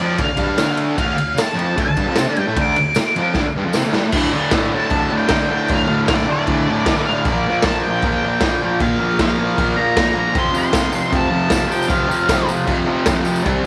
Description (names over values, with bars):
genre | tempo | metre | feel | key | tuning
garage rock duo or trio | 154 BPM | 4/4 | straight | D minor | A4 = 440 Hz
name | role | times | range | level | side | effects
octave-fuzz lead guitar | melody | 0.0-12.5 s | D5 to D6 | -24 LUFS | equal | distortion
fuzz guitar | riff | 0.0-13.7 s | D2 to C4 | -20 LUFS | equal | distortion
raw garage drum kit | drums | 0.0-13.5 s | crash cymbal, kick drum, ride cymbal, snare drum | -23 LUFS | equal | none
tambourine | percussion | 0.6-3.8, 10.5-13.4 s | none | -37 LUFS | equal | none
room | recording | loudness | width
light reverb, studio ambience | none | -18 LUFS | mono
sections
0.0-4.1 A section; 4.1-13.7 B section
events
drum fill 3.4-4.1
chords
0.0 Dm; 4.1 D5; 7.3 Bb5; 10.4 F5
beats
0.20 0.59 | 0.99 1.38 1.78 2.17 | 2.57 2.96 3.35 3.74 | 4.14 4.53 4.92 5.31 | 5.70 6.09 6.48 6.87 | 7.25 7.64 8.03 8.42 | 8.81 9.19 9.58 9.97 | 10.36 10.74 11.13 11.52 | 11.91 12.29 12.68 13.07 | 13.46